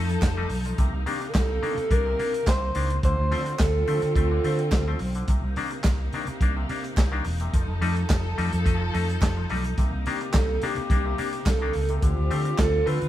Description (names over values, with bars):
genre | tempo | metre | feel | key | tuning
disco | 107 BPM | 4/4 | straight | C dorian | A4 = 442 Hz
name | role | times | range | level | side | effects
bright clav | accompaniment | 0.0-13.0 s | C3 to Eb4 | -33 LUFS | left 5 dB | none
warm symphonic string section | sustained chords | 0.0-13.1 s | C3 to A4 | -33 LUFS | right 1 dB | none
fingered electric bass | bass | 0.0-13.1 s | E1 to D3 | -27 LUFS | equal | none
warm soul drum kit | drums | 0.1-13.1 s | handclaps, hi-hat, kick drum, snare drum | -25 LUFS | equal | none
group handclap | percussion | 0.2-12.7 s | none | -41 LUFS | right 3 dB | none
breathy alto saxophone | melody | 1.1-5.0, 10.1-13.1 s | G4 to C5 | -27 LUFS | equal | none
room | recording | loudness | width
moderate stone room reverb, RT60 1.2 s | band playing live in one room | -22 LUFS | side -13 dB against mid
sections
0.0-13.1 A section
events
none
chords
0.0 F7; 0.8 Cm7; 3.0 Dm7; 5.3 Cm7; 7.5 F7; 9.8 Cm7; 12.0 Dm7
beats
0.22 | 0.78 1.34 1.91 2.47 | 3.03 3.60 4.16 4.72 | 5.28 5.85 6.41 6.97 | 7.53 8.10 8.66 9.22 | 9.78 10.34 10.90 11.47 | 12.03 12.59